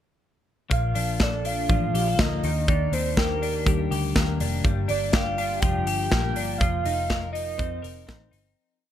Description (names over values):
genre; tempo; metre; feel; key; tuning
jangly indie pop; 122 BPM; 4/4; straight; Bb major; A4 = 436 Hz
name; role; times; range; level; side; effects
soft octave-layered synth lead; melody; 0.7-8.3 s; Bb4 to G5; -29 LUFS; right 4 dB; chorus, phaser, tape echo
twelve-string electric guitar; arpeggios; 0.7-8.9 s; G2 to Bb4; -28 LUFS; left 6 dB; lush chorus, tape echo
vintage muted picked electric bass; bass; 0.7-8.5 s; F1 to F2; -29 LUFS; right 1 dB; none
modern studio drum kit; drums; 0.7-8.4 s; hi-hat, kick drum, snare drum; -26 LUFS; equal; none
room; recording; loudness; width
small room reverb; echo-heavy mix; -22 LUFS; side -11 dB against mid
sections
0.7-8.6 verse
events
fade-out 6.6-8.6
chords
0.7 Bbmaj7; 2.4 Ebmaj7; 4.7 Gm7; 6.6 F7sus4